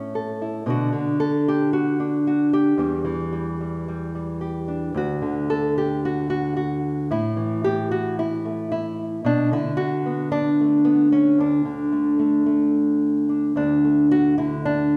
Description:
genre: folk, solo fingerstyle acoustic guitar.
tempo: 112 BPM.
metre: 4/4.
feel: straight.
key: D major.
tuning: A4 = 440 Hz.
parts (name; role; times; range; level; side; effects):
nylon-string guitar; solo; 0.0-15.0 s; D2 to A4; -22 LUFS; equal; none.
room: wet recital hall reverb, RT60 1.7 s.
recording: recorded in a church or concert hall.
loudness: -22 LUFS.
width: mono.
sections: 0.0-13.6 A section; 13.6-15.0 A section.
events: none.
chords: 0.0 A; 0.7 Bm7; 2.8 Em; 4.9 N.C.; 7.1 A5; 9.2 Bm7; 11.4 D5.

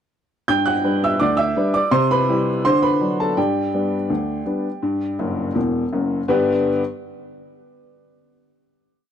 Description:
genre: ragtime piano.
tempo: 83 BPM.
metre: 2/4.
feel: straight.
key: G major.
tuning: A4 = 442 Hz.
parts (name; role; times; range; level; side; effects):
clear upright piano; solo; 0.5-6.8 s; E1 to G6; -18 LUFS; equal; none.
room: small room ambience.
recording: dry, close 1970s-style studio recording.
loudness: -18 LUFS.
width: side -9 dB against mid.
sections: 0.5-6.3 A section; 6.3-7.7 final chord.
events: upright piano fill 5.2-6.3.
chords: 0.5 G; 1.9 C; 2.7 D; 3.4 G.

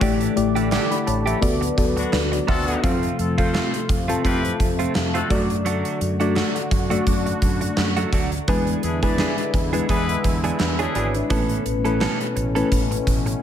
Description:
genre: 1980s-style pop.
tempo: 85 BPM.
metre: 4/4.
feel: swing 55% on 16ths.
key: D major.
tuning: A4 = 438 Hz.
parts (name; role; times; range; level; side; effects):
mellow FM electric piano; accompaniment; 0.0-13.4 s; G#3 to D6; -24 LUFS; left 3 dB; chorus.
sweeping resonant pad; sustained chords; 0.0-13.4 s; B2 to B4; -28 LUFS; left 1 dB; chorus.
direct-recorded clean electric guitar; riff; 0.0-13.3 s; E3 to A4; -28 LUFS; right 6 dB; analog chorus, ping-pong delay.
mellow fretless electric bass; bass; 0.0-13.3 s; G#1 to F#2; -26 LUFS; equal; wide subtle chorus.
gated 80s drum kit; drums; 0.0-13.4 s; hi-hat, kick drum, snare drum, tambourine; -24 LUFS; equal; gated reverb.
group handclap; percussion; 0.7-12.2 s; none; -40 LUFS; right 6 dB; none.
clear horn section; stabs; 2.0-11.1 s; B3 to D5; -29 LUFS; left 4 dB; none.
room: light reverb, small room ambience.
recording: none.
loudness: -19 LUFS.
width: side -9 dB against mid.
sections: 0.0-2.8 A section; 2.8-13.4 B section.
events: band accent 0.0-2.8.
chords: 0.0 A7sus4; 1.4 D6; 2.8 F; 5.3 D/F#; 8.5 E7; 11.3 Aadd9.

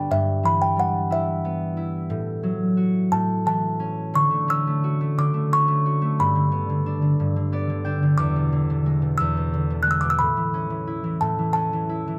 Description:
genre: children's music, lullaby.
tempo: 60 BPM (dotted quarters).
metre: 6/8.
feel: straight.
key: D major.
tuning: A4 = 440 Hz.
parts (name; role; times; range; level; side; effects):
concert harp; accompaniment; 0.0-12.2 s; E2 to G5; -24 LUFS; equal; none.
music box; melody; 0.1-12.2 s; E5 to F#6; -26 LUFS; equal; none.
room: light reverb.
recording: none.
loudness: -23 LUFS.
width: mono.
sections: 0.0-4.1 A section; 4.1-12.2 B section.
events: harp fill 7.2-8.2.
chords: 0.1 Em/G; 2.1 F#m7/A; 3.1 A; 4.1 Dmaj7; 6.2 G; 8.2 E7; 10.2 A.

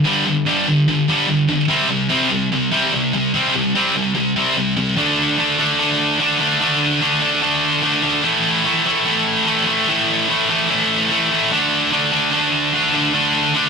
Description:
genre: rock.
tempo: 147 BPM.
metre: 4/4.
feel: straight.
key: unclear.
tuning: A4 = 440 Hz.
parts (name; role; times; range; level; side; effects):
high-gain distorted guitar; solo; 0.0-13.7 s; G2 to D4; -14 LUFS; equal; distortion.
room: moderate stone room reverb, RT60 1.1 s.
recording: rough rehearsal-room recording, tube saturation.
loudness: -14 LUFS.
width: side -5 dB against mid.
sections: 0.0-5.0 A section; 5.0-13.7 B section.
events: none.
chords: 0.0 G5; 1.7 C5; 5.0 D5; 8.2 A5; 11.5 D5.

